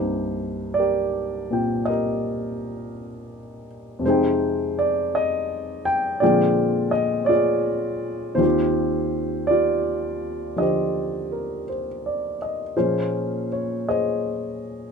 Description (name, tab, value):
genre	jazz ballad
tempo	55 BPM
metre	4/4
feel	swing 68% on 8ths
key	unclear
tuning	A4 = 440 Hz
part	warm grand piano	solo	0.0-14.9 s	C2 to G5	-21 LUFS	equal	none
room	light reverb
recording	minimal, uncompressed stereo recording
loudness	-21 LUFS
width	side -6 dB against mid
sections	0.0-14.9 A section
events	none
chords	0.0 Cm9; 4.0 Fm9; 6.2 Bb13; 8.4 Eb69; 12.7 Bbm9